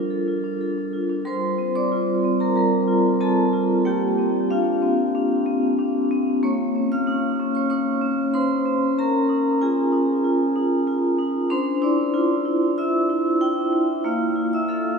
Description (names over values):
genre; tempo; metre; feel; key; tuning
classical, contemporary piece for solo vibraphone; 94 BPM; 4/4; rubato; unclear; A4 = 435 Hz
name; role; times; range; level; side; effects
vibraphone with medium hard mallets; solo; 0.0-15.0 s; G3 to F6; -19 LUFS; equal; none
room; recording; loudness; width
wet cathedral reverb, RT60 5.9 s; recorded in a church or concert hall; -19 LUFS; side -5 dB against mid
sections
0.0-1.3 A section; 1.3-15.0 A section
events
none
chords
0.0 Gm9; 1.3 Gm11; 3.9 Bbadd9; 6.4 Bbmadd9; 9.0 C#add9; 11.5 Dm9; 14.0 Bbmaj7(no3)